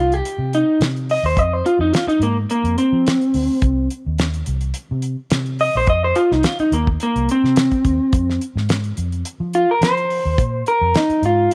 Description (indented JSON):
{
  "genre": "straight-eighth soul blues",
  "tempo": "106 BPM",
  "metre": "4/4",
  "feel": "swing 54% on 16ths",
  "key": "C minor",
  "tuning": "A4 = 441 Hz",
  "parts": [
    { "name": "electric guitar through a small old amp", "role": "melody", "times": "0.0-11.5 s", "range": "Bb3 to Eb5", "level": "-19 LUFS", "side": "equal", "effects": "none" },
    { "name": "vintage muted fingered electric bass", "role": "bass", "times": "0.0-11.5 s", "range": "Bb1 to F3", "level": "-24 LUFS", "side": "equal", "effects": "none" },
    { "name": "damped 70s drum kit", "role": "drums", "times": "0.1-11.5 s", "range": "hi-hat, kick drum, snare drum", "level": "-24 LUFS", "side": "equal", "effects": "none" }
  ],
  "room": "small room ambience",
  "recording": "none",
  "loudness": "-18 LUFS",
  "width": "mono",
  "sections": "0.0-11.5 A section",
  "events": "clean electric guitar solo 0.0-11.5",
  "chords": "0.0 Cm; 1.4 Fm; 3.6 Cm; 8.1 Fm",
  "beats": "0.24 0.80 | 1.37 1.93 2.50 3.06 | 3.62 4.19 4.75 5.31 | 5.88 6.44 7.00 7.57 | 8.13 8.70 9.26 9.82 | 10.38 10.95 11.51"
}